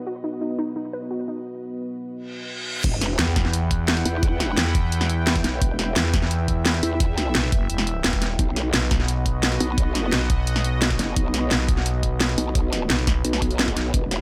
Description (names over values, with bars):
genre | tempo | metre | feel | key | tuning
dark technical drum and bass | 173 BPM | 4/4 | straight | E harmonic minor | A4 = 440 Hz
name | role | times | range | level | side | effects
sweeping resonant pad | sustained chords | 0.0-14.2 s | B3 to G5 | -32 LUFS | equal | chorus, sidechain pumping
warbly dusty pluck | arpeggios | 0.1-1.4 s | D#4 to B4 | -32 LUFS | equal | chorus, cassette tape, sidechain pumping, digital delay
reverse cymbal and sub drop | sound effects | 2.3-4.2 s | none | -34 LUFS | equal | none
growl bass | bass | 2.8-14.2 s | E1 to E2 | -27 LUFS | equal | chorus, tube saturation, sidechain pumping
drum and bass drum kit | drums | 2.8-14.2 s | crash cymbal, hi-hat, snare drum | -26 LUFS | equal | low-pass filter on hats, low-pass filter on cymbals, low-pass filter on snare, low-pass filter on room
electronic kick drum | drums | 2.8-14.0 s | none | -25 LUFS | equal | none
growling FM bass | bass | 3.2-13.2 s | E1 to E2 | -26 LUFS | equal | none
room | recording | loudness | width
little or no reverb | low-pass filter | -22 LUFS | mono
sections
0.0-2.8 A section; 2.8-14.2 B section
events
filter sweep 0.0-2.8; reverse cymbal 2.3-2.8; drop 2.8-14.2; impact 2.8-4.2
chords
0.0 B; 2.8 Em; 8.4 B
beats
| 0.07 0.41 0.76 1.11 | 1.45 1.80 2.15 2.49 | 2.84 3.19 3.54 3.88 | 4.23 4.58 4.92 5.27 | 5.62 5.96 6.31 6.66 | 7.00 7.35 7.70 8.04 | 8.39 8.74 9.08 9.43 | 9.78 10.12 10.47 10.82 | 11.16 11.51 11.86 12.21 | 12.55 12.90 13.25 13.59 | 13.94